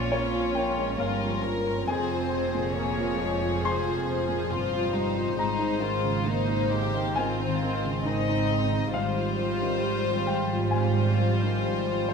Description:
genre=cinematic, emotional film score for orchestra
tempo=68 BPM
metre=4/4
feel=rubato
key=F minor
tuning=A4 = 442 Hz
part: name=warm symphonic violin section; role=melody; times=0.0-12.1 s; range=Bb4 to Eb5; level=-33 LUFS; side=left 6 dB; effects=none
part: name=warm symphonic violin section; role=second line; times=0.0-12.1 s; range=Eb4 to Bb4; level=-32 LUFS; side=left 4 dB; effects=none
part: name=dark symphonic viola section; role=accompaniment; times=0.0-12.1 s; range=F3 to Db4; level=-33 LUFS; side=right 3 dB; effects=none
part: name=warm baby grand piano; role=accompaniment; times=0.0-12.1 s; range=F2 to C6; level=-30 LUFS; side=equal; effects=none
part: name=concert harp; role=arpeggios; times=0.0-12.1 s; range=F2 to C6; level=-34 LUFS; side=left 12 dB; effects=none
part: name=dark symphonic double bass section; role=bass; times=0.0-12.1 s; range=F1 to Bb1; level=-32 LUFS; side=right 5 dB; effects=none
part: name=warm symphonic cello section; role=bass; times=0.0-12.1 s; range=F2 to Bb2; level=-34 LUFS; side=right 5 dB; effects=none
room=moderate concert hall reverb, RT60 2.1 s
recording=none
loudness=-24 LUFS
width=side -5 dB against mid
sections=0.0-12.1 A section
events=none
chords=0.0 Bbm; 1.9 Fmadd9; 5.4 Abadd9; 8.9 Fmadd9/Ab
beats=0.12 0.99 | 1.88 2.76 3.64 4.52 | 5.39 6.27 7.17 8.06 | 8.95 9.84 10.73 11.65

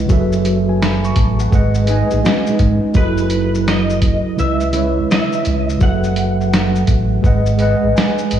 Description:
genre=lo-fi hip hop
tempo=84 BPM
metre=4/4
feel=swing 65% on 16ths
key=F# dorian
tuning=A4 = 440 Hz
part: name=mellow tine electric piano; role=accompaniment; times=0.0-8.4 s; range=C#3 to C#6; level=-17 LUFS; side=right 1 dB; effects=medium stereo tremolo, cassette tape, low-pass filter
part: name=sub bass with octave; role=bass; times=0.0-8.4 s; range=F#1 to C#2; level=-18 LUFS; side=right 1 dB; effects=none
part: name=lo-fi sampler-style drum kit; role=drums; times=0.1-8.4 s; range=hi-hat, kick drum, shaker, snare drum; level=-17 LUFS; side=equal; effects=none
part: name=nylon-string guitar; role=second line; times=1.9-2.9 s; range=G#3 to G#4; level=-23 LUFS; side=equal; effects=low-pass filter, tape echo
part: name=electric guitar through a small old amp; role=melody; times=3.0-7.9 s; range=B4 to F#5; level=-24 LUFS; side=equal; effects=ensemble chorus, low-pass filter, tape echo
room=moderate lush hall reverb, RT60 2.1 s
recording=dreamy mix soaked in reverb, cassette tape, studio ambience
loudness=-13 LUFS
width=side -10 dB against mid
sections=0.0-8.4 A section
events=tine electric piano fill 7.6-8.4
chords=0.1 F#m11; 1.5 G#m7; 3.0 F#m11; 4.4 C#m9; 5.8 F#m11; 7.2 G#m7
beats=| 0.10 0.81 1.53 2.24 | 2.96 3.67 4.38 5.10 | 5.81 6.53 7.24 7.96

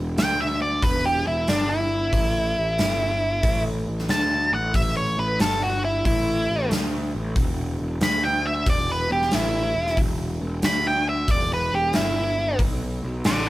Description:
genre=blues rock power trio and southern rock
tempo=92 BPM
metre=4/4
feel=swing 66% on 8ths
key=unclear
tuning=A4 = 441 Hz
part: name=fuzz picked electric bass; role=bass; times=0.0-13.5 s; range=E1 to D2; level=-26 LUFS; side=equal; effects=overdrive
part: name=octave-fuzz lead guitar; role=melody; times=0.2-13.5 s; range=D4 to B5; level=-23 LUFS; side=equal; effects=distortion
part: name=big rock drum kit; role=drums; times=0.2-13.5 s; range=hi-hat, kick drum, snare drum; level=-26 LUFS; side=equal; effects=none
room=light reverb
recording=band playing live in one room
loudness=-20 LUFS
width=side -16 dB against mid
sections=0.0-13.5 A section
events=lead electric guitar solo 0.0-13.5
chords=0.0 Em7; 2.1 A5; 7.4 E7(no3); 12.6 B7(no3)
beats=0.18 0.83 1.49 | 2.14 2.79 3.44 4.10 | 4.75 5.40 6.06 6.71 | 7.36 8.02 8.67 9.33 | 9.98 10.63 11.29 11.94 | 12.60 13.25

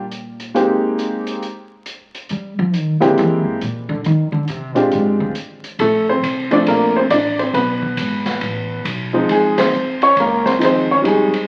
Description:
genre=jazz piano trio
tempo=137 BPM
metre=4/4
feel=swing 65% on 8ths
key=unclear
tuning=A4 = 440 Hz
part: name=warm upright piano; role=melody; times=0.0-11.5 s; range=F3 to D5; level=-17 LUFS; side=equal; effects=none
part: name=upright bass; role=bass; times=0.0-11.3 s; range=Ab1 to G3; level=-24 LUFS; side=equal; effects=none
part: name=open jazz drum kit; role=drums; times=0.1-11.4 s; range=hi-hat, kick drum, ride cymbal, snare drum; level=-29 LUFS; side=equal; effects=none
room=moderate large studio reverb, RT60 1.3 s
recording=very old 78 rpm record, vinyl crackle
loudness=-17 LUFS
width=mono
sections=0.0-5.8 A section; 5.8-11.5 B section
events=upright bass solo 0.0-5.8; band accent 9.5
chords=0.0 N.C.; 0.6 Abmaj9; 1.4 N.C.; 2.3 Ebmaj9; 3.2 C7b13; 4.0 F7(no3) (rootless); 4.9 Dm7b5; 5.8 Bbmaj7; 7.5 B7(no3); 9.3 Dbmaj9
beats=0.11 | 0.55 0.99 1.42 1.86 | 2.30 2.73 3.17 3.60 | 4.04 4.48 4.91 5.35 | 5.79 6.22 6.66 7.10 | 7.54 7.97 8.41 8.85 | 9.29 9.73 10.16 10.60 | 11.04

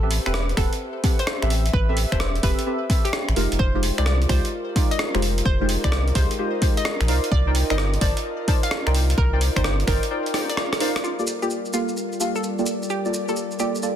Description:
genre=UK garage, two-step garage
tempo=129 BPM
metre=4/4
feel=swing 66% on 16ths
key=unclear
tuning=A4 = 440 Hz
part: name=hollow square pluck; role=melody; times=0.0-13.8 s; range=F4 to F5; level=-30 LUFS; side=equal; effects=chorus, ping-pong delay
part: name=deep mellow chord stab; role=stabs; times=0.0-13.9 s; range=Ab3 to A5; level=-26 LUFS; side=equal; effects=chorus, ping-pong delay
part: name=soft dub sub bass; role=bass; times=0.0-10.0 s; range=E1 to C2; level=-22 LUFS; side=equal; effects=tube saturation
part: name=airy breathy pad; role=texture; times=0.0-14.0 s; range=G3 to E5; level=-32 LUFS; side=left 2 dB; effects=chorus, sidechain pumping
part: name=breakbeat sampler-style drum kit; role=drums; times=0.1-11.0 s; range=finger snaps, hi-hat, rim click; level=-27 LUFS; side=right 1 dB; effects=soft clipping on snare
part: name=electronic kick drum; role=drums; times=0.6-10.0 s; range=none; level=-22 LUFS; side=equal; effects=overdrive
part: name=maracas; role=percussion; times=11.0-13.9 s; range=none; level=-32 LUFS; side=equal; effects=none
room=digital ambience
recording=dense, heavily limited modern master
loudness=-20 LUFS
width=side -10 dB against mid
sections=0.0-11.0 A section; 11.0-14.0 B section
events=break 10.1-11.0; drum fill 10.3-11.0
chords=0.0 Am9; 3.4 Fm9; 7.1 Cm9; 11.0 Gm9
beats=0.34 0.81 1.27 | 1.74 2.20 2.67 3.13 | 3.60 4.06 4.53 4.99 | 5.46 5.92 6.39 6.85 | 7.32 7.78 8.25 8.71 | 9.18 9.64 10.11 10.57 | 11.04 11.50 11.97 12.43 | 12.90 13.36 13.83

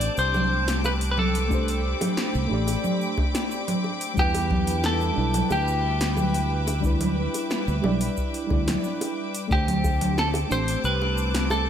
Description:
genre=sunset chillout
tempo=90 BPM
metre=4/4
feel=straight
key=unclear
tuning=A4 = 439 Hz
part: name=clean electric guitar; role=melody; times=0.0-11.7 s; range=G4 to D5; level=-27 LUFS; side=equal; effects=lush chorus, digital delay
part: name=mellow FM electric piano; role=accompaniment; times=0.0-11.7 s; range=G3 to D5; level=-30 LUFS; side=equal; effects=chorus, auto-pan, low-pass filter, digital delay
part: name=clear studio string section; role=sustained chords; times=0.0-11.7 s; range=C4 to D6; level=-32 LUFS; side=left 1 dB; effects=vintage 12-bit sampler grit
part: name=fingered electric bass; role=bass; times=0.0-11.7 s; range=A1 to E2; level=-26 LUFS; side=equal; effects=tube saturation
part: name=deep house drum kit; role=drums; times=0.0-11.6 s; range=cabasa, congas, hi-hat, snare drum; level=-28 LUFS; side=right 1 dB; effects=overdrive
part: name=bongos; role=percussion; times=0.3-11.6 s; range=none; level=-36 LUFS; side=right 1 dB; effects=none
part: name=electronic kick drum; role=drums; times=1.5-10.0 s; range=none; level=-26 LUFS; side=equal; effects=none
room=moderate lush hall reverb, RT60 1.7 s, digital ambience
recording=bright 1980s-style digital production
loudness=-22 LUFS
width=side -9 dB against mid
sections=0.0-9.5 A section; 9.5-11.7 A section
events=break 8.8-9.5; filter sweep on FM electric piano 9.5-11.7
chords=0.0 D7sus4; 4.2 Em7; 9.5 D7sus4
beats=0.17 0.84 | 1.50 2.17 2.84 3.50 | 4.17 4.84 5.50 6.17 | 6.84 7.50 8.17 8.84 | 9.51 10.17 10.84 11.51

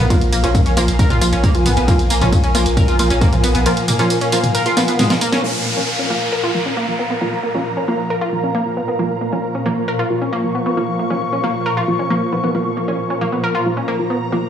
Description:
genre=driving peak-time techno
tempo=135 BPM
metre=4/4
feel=straight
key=Bb minor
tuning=A4 = 441 Hz
part: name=analog pluck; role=riff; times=0.0-14.4 s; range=Ab3 to Bb4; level=-21 LUFS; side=equal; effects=chorus, overdrive, sidechain pumping, analog delay
part: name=saturated sub bass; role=bass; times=0.0-3.7 s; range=Bb1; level=-19 LUFS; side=equal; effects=overdrive, sidechain pumping, low-pass filter
part: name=swarming drone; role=drone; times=0.0-14.5 s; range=Bb2 to F3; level=-24 LUFS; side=equal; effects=built-in reverb, sidechain pumping
part: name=ethereal airy pad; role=texture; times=0.0-14.5 s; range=Bb4 to Db6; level=-23 LUFS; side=left 2 dB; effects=ensemble chorus, built-in reverb, sidechain pumping
part: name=filtered dub chord stab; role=stabs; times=0.1-14.5 s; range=F3 to F4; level=-23 LUFS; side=equal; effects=chorus, cassette tape, sidechain pumping, tape echo
part: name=electronic kick drum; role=drums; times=0.1-3.3 s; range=none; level=-15 LUFS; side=equal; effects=none
part: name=techno drum kit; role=drums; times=0.1-5.4 s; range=hi-hat, ride cymbal, snare drum, tambourine, toms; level=-20 LUFS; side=right 1 dB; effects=sidechain pumping on hats, low-pass filter on hats, sidechain pumping on cymbals, low-pass filter on cymbals, sidechain pumping on perc, low-pass filter on perc, sidechain pumping on toms, low-pass filter on toms, low-pass filter on snare, low-pass filter on room
part: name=downlifter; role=sound effects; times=5.4-9.0 s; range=none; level=-24 LUFS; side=equal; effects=none
room=moderate digital room reverb, RT60 1.1 s, digital ambience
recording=dry, gritty hardware recording, small room ambience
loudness=-15 LUFS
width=side -9 dB against mid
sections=0.0-5.4 A section; 5.4-14.5 B section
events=drop 0.0-5.4; drum fill 4.8-5.4; band accent 5.3; filter sweep on synth arpeggio sound 5.4-14.5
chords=0.0 Bb5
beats=| 0.10 0.55 0.99 1.44 | 1.88 2.33 2.77 3.21 | 3.66 4.10 4.55 4.99 | 5.44 5.88 6.33 6.77 | 7.21 7.66 8.10 8.55 | 8.99 9.44 9.88 10.33 | 10.77 11.21 11.66 12.10 | 12.55 12.99 13.44 13.88 | 14.33

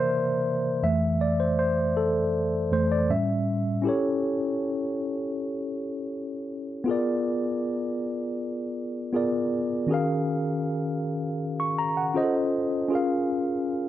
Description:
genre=soul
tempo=79 BPM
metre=4/4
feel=straight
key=Eb minor from 9.9 s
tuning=A4 = 440 Hz
part: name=mellow tine electric piano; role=solo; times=0.0-13.9 s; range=F2 to Db6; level=-24 LUFS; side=equal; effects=medium stereo tremolo
room=light reverb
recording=none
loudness=-24 LUFS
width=side -12 dB against mid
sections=0.0-3.9 A section; 3.9-9.9 B section; 9.9-13.9 C section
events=tine electric piano solo 0.0-3.9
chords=0.0 C7; 0.8 Fmaj7; 3.1 A7; 6.9 Bb7b9; 9.9 Ebm11; 12.2 F7b13; 12.9 Bbm7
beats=0.08 | 0.83 1.59 2.35 3.10 | 3.86 4.61 5.37 6.12 | 6.88 7.64 8.39 9.15 | 9.90 10.66 11.41 12.17 | 12.92 13.68

